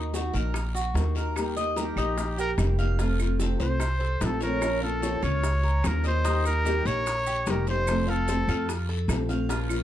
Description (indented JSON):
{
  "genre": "latin, Cuban son and guajira",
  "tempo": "148 BPM",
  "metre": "4/4",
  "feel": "straight",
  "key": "unclear",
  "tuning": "A4 = 440 Hz",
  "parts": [
    { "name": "nylon-string guitar", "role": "accompaniment", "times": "0.0-9.8 s", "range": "C3 to G4", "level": "-30 LUFS", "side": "left 1 dB", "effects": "none" },
    { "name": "Cuban tres", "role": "arpeggios", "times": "0.0-9.8 s", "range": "Eb4 to F5", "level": "-33 LUFS", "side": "right 1 dB", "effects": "none" },
    { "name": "upright bass", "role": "bass", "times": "0.0-9.8 s", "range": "F1 to F2", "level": "-27 LUFS", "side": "equal", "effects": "none" },
    { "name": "bongos", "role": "percussion", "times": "0.1-9.8 s", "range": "none", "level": "-36 LUFS", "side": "left 4 dB", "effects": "none" },
    { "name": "guiro", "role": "percussion", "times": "0.1-9.8 s", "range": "none", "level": "-43 LUFS", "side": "left 5 dB", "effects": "none" },
    { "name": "maracas", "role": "percussion", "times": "0.1-9.8 s", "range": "none", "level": "-44 LUFS", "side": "right 6 dB", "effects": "none" },
    { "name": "claves", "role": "percussion", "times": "0.5-9.8 s", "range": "none", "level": "-42 LUFS", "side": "right 3 dB", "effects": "none" },
    { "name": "bright trumpet", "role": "melody", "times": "1.8-8.7 s", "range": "G4 to Db5", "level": "-30 LUFS", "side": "equal", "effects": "plate reverb" }
  ],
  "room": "light reverb",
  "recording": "dark, warm production",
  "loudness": "-24 LUFS",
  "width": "side -12 dB against mid",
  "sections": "0.0-9.8 A section",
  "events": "trumpet solo 0.0-9.8",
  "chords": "0.0 Ebm; 1.4 Eb; 3.0 F; 4.6 Bbm; 6.2 Eb; 7.9 F"
}